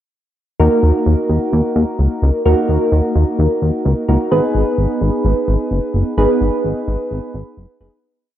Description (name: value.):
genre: pop.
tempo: 129 BPM.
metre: 4/4.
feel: straight.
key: Eb minor.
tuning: A4 = 440 Hz.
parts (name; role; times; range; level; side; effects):
soft electric-piano-like synth keys; accompaniment; 0.6-8.0 s; Bb3 to Cb5; -17 LUFS; right 1 dB; chorus, phaser.
chorused synth bass; bass; 0.6-7.9 s; Gb1 to Eb2; -14 LUFS; equal; none.
room: moderate concert hall reverb, RT60 1.8 s, digital ambience.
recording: worn, warbling old tape, cassette tape, warbly pitch drift.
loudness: -14 LUFS.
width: side -11 dB against mid.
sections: 0.6-8.0 verse.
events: fade-out 6.2-8.0.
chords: 0.6 Ebm; 4.3 Abm.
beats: | 0.60 1.06 1.53 1.99 | 2.46 2.92 3.39 3.85 | 4.32 4.78 5.25 5.71 | 6.18 6.64 7.11 7.57.